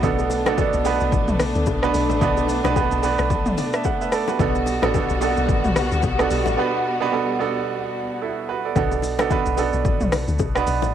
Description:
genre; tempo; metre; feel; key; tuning
amapiano; 110 BPM; 4/4; swing 58% on 16ths; unclear; A4 = 441 Hz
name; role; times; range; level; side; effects
bright grand piano; accompaniment; 0.0-10.9 s; B2 to A5; -22 LUFS; right 7 dB; cassette tape
warm studio string section; sustained chords; 0.0-8.7 s; G3 to F#4; -26 LUFS; left 3 dB; cassette tape
deep log drum bass; bass; 0.0-10.9 s; A1 to D2; -25 LUFS; left 2 dB; none
deep house drum kit; drums; 0.0-10.9 s; hi-hat, kick drum, rim click, shaker, toms; -24 LUFS; left 2 dB; overdrive, cassette tape
congas and bongos; percussion; 0.0-10.9 s; none; -30 LUFS; left 12 dB; none
room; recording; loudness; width
light reverb, small room ambience; home recording on cassette; -18 LUFS; side -10 dB against mid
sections
0.0-8.8 A section; 8.8-10.9 A section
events
drop 0.0-8.8, 8.8-10.9; grand piano fill 3.3-4.4; break 6.6-8.8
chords
0.0 Bm7; 4.4 Gmaj7; 8.8 Bm7

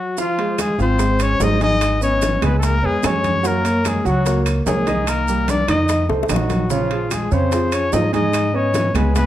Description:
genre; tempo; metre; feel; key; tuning
Afro-Cuban jazz; 147 BPM; 4/4; straight; unclear; A4 = 438 Hz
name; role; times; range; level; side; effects
breathy trumpet; melody; 0.0-9.3 s; F4 to Eb5; -22 LUFS; left 2 dB; none
mellow trombone; second line; 0.0-9.3 s; F3 to Eb4; -24 LUFS; left 4 dB; none
warm concert grand piano; accompaniment; 0.2-9.3 s; Db3 to Ab5; -22 LUFS; right 4 dB; none
bongos; percussion; 0.2-9.3 s; none; -30 LUFS; left 7 dB; none
congas; percussion; 0.2-9.3 s; none; -27 LUFS; equal; none
maracas; percussion; 0.2-9.3 s; none; -34 LUFS; right 9 dB; none
timbales; percussion; 0.4-9.3 s; none; -29 LUFS; right 6 dB; none
claves; percussion; 0.6-9.2 s; none; -34 LUFS; left 7 dB; none
upright bass; bass; 0.8-9.3 s; Ab1 to Ab2; -21 LUFS; equal; none
room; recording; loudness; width
moderate large studio reverb, RT60 0.8 s; dark, warm production; -16 LUFS; side -12 dB against mid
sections
0.2-9.3 A section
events
band accent 0.0; drum fill 6.1-6.7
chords
0.2 Ab6; 1.8 Abm; 2.6 Db7; 3.4 Gb; 5.1 Cm7; 5.9 F7b9; 6.7 Bbm9; 8.3 Abm

